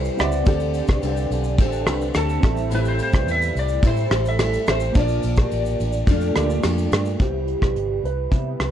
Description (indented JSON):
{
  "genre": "indie pop, bedroom pop",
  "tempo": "107 BPM",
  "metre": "4/4",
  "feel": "straight",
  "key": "C major",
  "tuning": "A4 = 442 Hz",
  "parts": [
    { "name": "electric slide guitar", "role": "melody", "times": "0.0-8.7 s", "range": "G4 to E5", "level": "-26 LUFS", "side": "left 1 dB", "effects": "analog chorus, low-pass filter, slapback echo" },
    { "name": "vibraphone with medium hard mallets", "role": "second line", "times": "0.0-8.5 s", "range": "F4 to E5", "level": "-30 LUFS", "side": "right 7 dB", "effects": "lush chorus, slapback echo" },
    { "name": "nylon-string guitar", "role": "accompaniment", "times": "0.0-8.7 s", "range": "A2 to A4", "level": "-28 LUFS", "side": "left 3 dB", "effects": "ensemble chorus, vibrato effect, low-pass filter" },
    { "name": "reed electric piano", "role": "accompaniment", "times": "0.0-7.2 s", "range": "Bb3 to A5", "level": "-30 LUFS", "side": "right 7 dB", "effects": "cassette tape" },
    { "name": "vintage muted fingered electric bass", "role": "bass", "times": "0.0-8.7 s", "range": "G1 to C3", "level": "-24 LUFS", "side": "equal", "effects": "none" },
    { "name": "soft brush drum kit", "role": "drums", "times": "0.0-8.7 s", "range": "hi-hat, kick drum, ride cymbal, rim click, shaker", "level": "-22 LUFS", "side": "equal", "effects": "vintage 12-bit sampler grit" }
  ],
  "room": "light reverb, small room ambience",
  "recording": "dark, warm production",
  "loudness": "-18 LUFS",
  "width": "side -10 dB against mid",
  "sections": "0.0-7.2 A section; 7.2-8.7 B section",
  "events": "none",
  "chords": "0.5 D7sus4; 2.4 Am7; 5.0 Bbmaj7; 7.2 Cmaj7",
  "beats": "| 0.47 1.03 1.59 2.15 | 2.71 3.27 3.83 4.39 | 4.95 5.51 6.08 6.64 | 7.20 7.76 8.32"
}